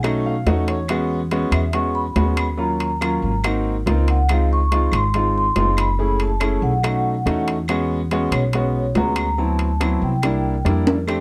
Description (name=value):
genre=Afro-Cuban jazz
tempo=141 BPM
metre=4/4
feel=straight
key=unclear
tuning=A4 = 438 Hz
part: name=clear baby grand piano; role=accompaniment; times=0.0-11.2 s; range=Gb3 to Gb5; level=-25 LUFS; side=equal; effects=none
part: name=upright bass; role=bass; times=0.0-11.2 s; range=Gb1 to F2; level=-23 LUFS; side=equal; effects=none
part: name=claves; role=percussion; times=0.0-11.2 s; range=none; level=-35 LUFS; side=equal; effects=none
part: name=timbales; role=percussion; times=0.0-11.2 s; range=none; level=-26 LUFS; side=equal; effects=none
part: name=vibraphone with soft mallets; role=melody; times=1.5-10.8 s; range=C#5 to C#6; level=-26 LUFS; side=equal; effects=none
room=light reverb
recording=dark, warm production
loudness=-20 LUFS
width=mono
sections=0.0-11.1 A section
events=grand piano fill 0.0-0.9; drum fill 10.9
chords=0.0 Cb7; 0.9 E6; 2.6 Ebm7; 3.4 Ab7; 4.3 Dbmaj7; 6.0 Gbm7; 6.8 Cb7; 7.7 E6; 9.4 D13; 10.2 C7